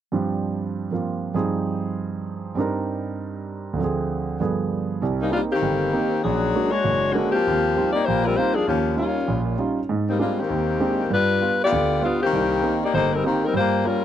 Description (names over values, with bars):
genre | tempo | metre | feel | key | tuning
jazz | 197 BPM | 4/4 | swing 62% on 8ths | C minor | A4 = 440 Hz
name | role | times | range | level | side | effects
warm concert grand piano | accompaniment | 0.1-14.0 s | F#1 to Bb4 | -24 LUFS | right 4 dB | none
mellow saxophone section | melody | 5.2-14.0 s | D3 to D5 | -21 LUFS | left 4 dB | tape echo
room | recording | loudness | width
moderate booth ambience, RT60 0.3 s | dry, close 1970s-style studio recording | -20 LUFS | side -10 dB against mid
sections
0.1-5.0 A section; 5.0-14.0 B section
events
none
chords
0.1 G7sus4; 1.3 Fm9/G; 2.6 Cm9/G; 3.8 Dm7b5; 4.4 G7b9; 5.0 Cm7; 6.2 Bb7alt; 7.4 Eb69; 8.7 Eb9; 9.9 Abmaj9#11; 11.1 G7; 12.3 Cm7; 13.5 Gm7b5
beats
| 0.13 0.43 0.74 1.04 | 1.35 1.65 1.96 2.26 | 2.57 2.87 3.18 3.48 | 3.79 4.09 4.40 4.71 | 5.01 5.31 5.62 5.92 | 6.23 6.53 6.84 7.14 | 7.45 7.75 8.06 8.36 | 8.67 8.97 9.28 9.58 | 9.89 10.19 10.50 10.80 | 11.11 11.41 11.71 12.02 | 12.32 12.63 12.93 13.24 | 13.54 13.85